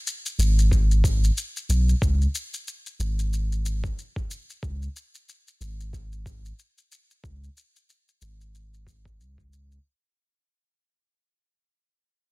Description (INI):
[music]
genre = organic downtempo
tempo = 92 BPM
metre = 4/4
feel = swing 58% on 16ths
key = unclear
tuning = A4 = 441 Hz
[part]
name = shaker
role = drums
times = 0.1-9.8 s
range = none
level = -34 LUFS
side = left 2 dB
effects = small room ambience
[part]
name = warm sub bass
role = bass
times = 0.4-9.8 s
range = G#1 to C#2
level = -22 LUFS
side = equal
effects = none
[part]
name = electronic kick drum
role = drums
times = 0.7-9.5 s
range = none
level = -26 LUFS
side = equal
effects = small room ambience
[sound]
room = little or no reverb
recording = dense, heavily limited modern master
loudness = -22 LUFS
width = side -24 dB against mid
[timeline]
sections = 0.0-9.8 A section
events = fade-out 0.0-9.8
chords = none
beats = 0.06 0.71 1.36 | 2.02 2.67 3.32 3.97 | 4.62 5.28 5.93 6.58 | 7.23 7.89 8.54 9.19